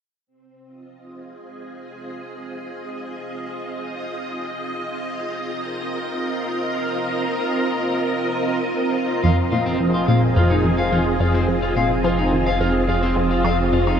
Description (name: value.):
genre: ambient, sequencer-driven space music.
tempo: 107 BPM.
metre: 4/4.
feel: straight.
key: F minor.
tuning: A4 = 440 Hz.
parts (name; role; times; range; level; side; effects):
string machine, full ensemble; sustained chords; 0.3-14.0 s; C4 to Eb5; -22 LUFS; right 1 dB; ensemble chorus.
electric guitar at the edge of break-up; arpeggios; 9.2-14.0 s; C4 to F5; -24 LUFS; left 2 dB; auto-pan, ping-pong delay.
resonant blip pluck; riff; 9.2-13.9 s; F2 to F3; -20 LUFS; equal; phaser, ping-pong delay.
round analog bass; bass; 9.2-14.0 s; F1; -27 LUFS; equal; none.
room: wet cathedral reverb, RT60 6.3 s.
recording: dreamy mix soaked in reverb.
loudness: -19 LUFS.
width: side -8 dB against mid.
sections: 0.3-9.2 A section; 9.2-14.0 B section.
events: fade-in on string machine 0.3-9.2.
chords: 0.3 Fm7.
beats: | 0.27 0.83 1.39 1.95 | 2.51 3.07 3.63 4.19 | 4.75 5.31 5.88 6.44 | 7.00 7.56 8.12 8.68 | 9.24 9.80 10.36 10.92 | 11.48 12.04 12.60 13.16 | 13.73.